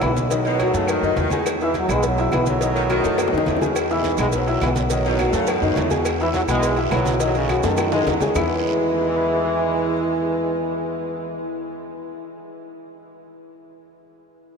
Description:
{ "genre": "latin, salsa", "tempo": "209 BPM", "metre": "4/4", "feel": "straight", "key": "E major", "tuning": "A4 = 440 Hz", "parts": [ { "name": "clear trombone section", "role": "melody", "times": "0.0-11.4 s", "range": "F#2 to G#3", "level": "-23 LUFS", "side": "right 1 dB", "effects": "ping-pong delay" }, { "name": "clear upright piano", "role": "accompaniment", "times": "0.0-12.1 s", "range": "D#3 to E6", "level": "-24 LUFS", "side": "left 3 dB", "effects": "none" }, { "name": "upright bass", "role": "bass", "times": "0.0-12.1 s", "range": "B1 to F#2", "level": "-27 LUFS", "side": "equal", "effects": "none" }, { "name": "claves", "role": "percussion", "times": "0.0-8.4 s", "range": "none", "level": "-39 LUFS", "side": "left 3 dB", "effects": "none" }, { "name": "congas", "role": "percussion", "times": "0.0-8.4 s", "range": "none", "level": "-32 LUFS", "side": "right 1 dB", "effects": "none" }, { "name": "cowbell and bongos", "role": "percussion", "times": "0.0-8.4 s", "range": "none", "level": "-30 LUFS", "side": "left 5 dB", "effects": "none" }, { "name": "maracas", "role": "percussion", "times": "0.0-8.4 s", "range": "none", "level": "-38 LUFS", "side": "right 13 dB", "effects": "none" }, { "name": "timbales and agogo bells", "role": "percussion", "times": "0.0-8.4 s", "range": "none", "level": "-31 LUFS", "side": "right 8 dB", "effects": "none" }, { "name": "clear saxophone section", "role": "second line", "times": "0.5-11.4 s", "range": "A2 to G#3", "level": "-28 LUFS", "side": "right 1 dB", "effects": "ping-pong delay" }, { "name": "guiro", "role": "percussion", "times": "3.8-8.4 s", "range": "none", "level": "-39 LUFS", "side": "right 11 dB", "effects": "none" } ], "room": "wet huge ambient reverb, RT60 7.6 s", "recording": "dreamy mix soaked in reverb", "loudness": "-18 LUFS", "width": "side -5 dB against mid", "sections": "0.0-8.4 A section; 8.4-10.7 B section", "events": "drum fill 3.2-3.8, 7.6-8.4", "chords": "0.3 B7; 1.5 E; 2.6 B7; 3.8 E; 4.9 B7; 6.1 E; 7.2 B7; 8.4 E", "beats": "0.03 | 0.32 0.60 0.89 1.18 | 1.46 1.75 2.04 2.32 | 2.61 2.90 3.18 3.47 | 3.76 4.04 4.33 4.62 | 4.91 5.19 5.48 5.77 | 6.06 6.34 6.63 6.92 | 7.21 7.50 7.78 8.07 | 8.36 8.65 8.94 9.22 | 9.51 9.80 10.09 10.38" }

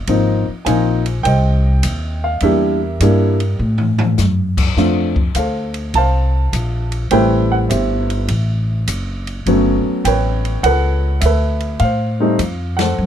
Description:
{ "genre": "jazz piano trio", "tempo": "102 BPM", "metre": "4/4", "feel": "swing 68% on 8ths", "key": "unclear", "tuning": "A4 = 442 Hz", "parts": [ { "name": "upright bass", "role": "bass", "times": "0.0-13.1 s", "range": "F#1 to A2", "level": "-17 LUFS", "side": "equal", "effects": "none" }, { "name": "warm baby grand piano", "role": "melody", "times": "0.1-13.1 s", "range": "F3 to A5", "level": "-17 LUFS", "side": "equal", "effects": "none" }, { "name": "open jazz drum kit", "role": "drums", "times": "0.1-12.9 s", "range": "crash cymbal, hi-hat, kick drum, ride cymbal, snare drum, toms", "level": "-24 LUFS", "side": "left 2 dB", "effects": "none" } ], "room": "little or no reverb", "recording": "close, detailed microphones", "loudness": "-14 LUFS", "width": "side -10 dB against mid", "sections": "0.0-13.1 A section", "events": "drum fill 3.6-4.2; band accent 12.7", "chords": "0.1 Ab6; 2.4 Em7b5; 3.6 F#m; 4.8 Dm7; 7.1 Am9; 8.3 F#m7b5; 9.5 Gmaj9#11; 11.8 Am", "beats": "| 0.08 0.66 1.25 1.83 | 2.42 3.01 3.60 4.18 | 4.77 5.36 5.95 6.53 | 7.12 7.71 8.29 8.88 | 9.47 10.05 10.64 11.22 | 11.81 12.39 12.98" }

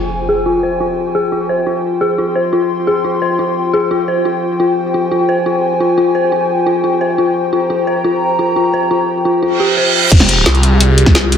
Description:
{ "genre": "dark technical drum and bass", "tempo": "174 BPM", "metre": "4/4", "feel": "straight", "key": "F minor", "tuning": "A4 = 440 Hz", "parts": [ { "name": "dark analog pad", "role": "sustained chords", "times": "0.0-11.4 s", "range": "F4 to C6", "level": "-16 LUFS", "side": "left 1 dB", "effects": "chorus, sidechain pumping" }, { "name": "impact and reverse cymbal", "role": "sound effects", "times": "0.0-0.5, 9.5-10.1 s", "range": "none", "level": "-17 LUFS", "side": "right 4 dB", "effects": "none" }, { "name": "dark detuned synth bell", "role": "arpeggios", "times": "0.3-9.9 s", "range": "F4 to C5", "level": "-16 LUFS", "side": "left 1 dB", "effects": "chorus, sidechain pumping, low-pass filter, dub echo" }, { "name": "phased detuned saw bass", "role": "bass", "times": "10.1-11.4 s", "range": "F1 to C2", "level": "-11 LUFS", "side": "equal", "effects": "phaser, overdrive, sidechain pumping" }, { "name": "drum and bass drum kit", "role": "drums", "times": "10.1-11.4 s", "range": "crash cymbal, hi-hat, snare drum", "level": "-13 LUFS", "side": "left 1 dB", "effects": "none" }, { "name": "electronic kick drum", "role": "drums", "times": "10.1-11.1 s", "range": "none", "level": "-8 LUFS", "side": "equal", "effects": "none" } ], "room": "wet digital room reverb, RT60 1.0 s", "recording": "dense, heavily limited modern master", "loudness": "-11 LUFS", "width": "side -8 dB against mid", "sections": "0.0-10.1 A section; 10.1-11.4 B section", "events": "impact 0.0-0.5; reverse cymbal 9.5-10.1; drop 10.1-11.4", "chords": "0.0 Fmadd9", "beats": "0.12 | 0.46 0.80 1.15 1.49 | 1.84 2.18 2.53 2.87 | 3.22 3.56 3.91 4.25 | 4.60 4.94 5.29 5.63 | 5.98 6.32 6.67 7.01 | 7.36 7.70 8.05 8.39 | 8.73 9.08 9.43 9.77 | 10.12 10.46 10.80 11.15" }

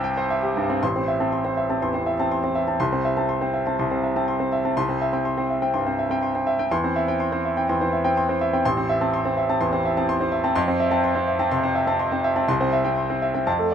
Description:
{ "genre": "classical, virtuoso piano study", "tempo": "123 BPM", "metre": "4/4", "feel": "rubato", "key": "A minor, C major from 8.6 s", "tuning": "A4 = 444 Hz", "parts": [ { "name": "clear concert grand piano", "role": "solo", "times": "0.0-13.7 s", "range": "A1 to E6", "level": "-20 LUFS", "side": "equal", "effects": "none" } ], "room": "light reverb", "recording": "minimal, uncompressed stereo recording", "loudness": "-20 LUFS", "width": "side -8 dB against mid", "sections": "0.8-13.7 A section", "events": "none", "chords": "0.0 C; 0.8 Am; 2.8 Am/C; 4.8 C; 6.7 C/E; 8.6 Am; 10.6 Fmaj7; 12.5 C", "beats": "0.30 | 0.82 1.31 1.81 2.31 | 2.80 3.29 3.78 4.28 | 4.77 5.25 5.74 6.23 | 6.71 7.20 7.69 8.16 | 8.64 9.13 9.61 10.09 | 10.56 11.04 11.52 12.00 | 12.49 12.97 13.47" }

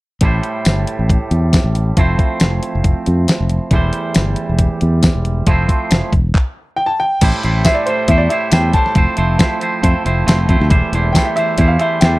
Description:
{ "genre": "indie rock", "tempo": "137 BPM", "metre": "4/4", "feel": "straight", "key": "unclear", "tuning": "A4 = 440 Hz", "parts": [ { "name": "twangy electric guitar", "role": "riff", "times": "0.2-12.2 s", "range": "E2 to C5", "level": "-19 LUFS", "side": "right 2 dB", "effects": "none" }, { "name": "fingered electric bass", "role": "bass", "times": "0.2-12.2 s", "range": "E1 to F2", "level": "-15 LUFS", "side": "equal", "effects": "none" }, { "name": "clean 12-bit digital drum machine", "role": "drums", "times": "0.2-12.1 s", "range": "crash cymbal, handclaps, hi-hat, kick drum, snare drum, tambourine", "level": "-14 LUFS", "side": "equal", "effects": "none" }, { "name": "clear upright piano", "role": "melody", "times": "6.8-12.2 s", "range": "C5 to A5", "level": "-18 LUFS", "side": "equal", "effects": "none" } ], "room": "little or no reverb", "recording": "dry, close 1970s-style studio recording", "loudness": "-12 LUFS", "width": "side -20 dB against mid", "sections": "0.2-7.2 A section; 7.2-12.2 B section", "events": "stop 6.4-7.2", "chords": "0.2 Am7; 2.0 Fmaj7; 3.7 Am7/E; 5.5 Fmaj7; 6.1 Em; 7.2 Am7; 9.0 Fmaj7; 10.7 Am7/E", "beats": "| 0.22 0.66 1.09 1.53 | 1.97 2.41 2.85 3.29 | 3.73 4.16 4.60 5.04 | 5.48 5.92 6.35 6.79 | 7.23 7.67 8.10 8.54 | 8.98 9.41 9.85 10.28 | 10.72 11.16 11.59 12.03" }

